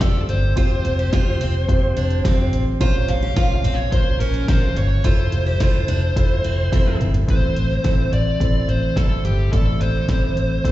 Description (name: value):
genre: piano-driven pop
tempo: 107 BPM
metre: 4/4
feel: straight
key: unclear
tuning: A4 = 440 Hz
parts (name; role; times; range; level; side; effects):
- dark smooth lead guitar; melody; 0.0-10.7 s; G4 to F5; -26 LUFS; left 1 dB; overdrive, slapback echo
- felt-muted upright piano; accompaniment; 0.0-10.7 s; A2 to D5; -27 LUFS; equal; slapback echo
- picked steel-string acoustic guitar; riff; 0.0-7.1 s; C4 to G4; -31 LUFS; right 5 dB; slapback echo
- vintage muted fingered electric bass; bass; 0.0-10.7 s; F1 to Bb1; -20 LUFS; equal; none
- deep house drum kit; drums; 0.0-10.7 s; hi-hat, kick drum, snare drum, toms; -20 LUFS; equal; none
room: little or no reverb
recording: live gig heard through the venue's PA, recital hall reverb, nothing above 7.9 kHz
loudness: -16 LUFS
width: side -15 dB against mid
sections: 0.0-7.3 A section; 7.3-10.7 B section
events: drum fill 6.7-7.3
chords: 0.0 Fsus2; 2.8 Bbmadd9; 5.0 Fmaj7; 7.3 Am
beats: 0.01 | 0.57 1.13 1.69 2.25 | 2.81 3.37 3.93 4.49 | 5.05 5.61 6.17 6.72 | 7.29 7.84 8.40 8.96 | 9.53 10.09 10.64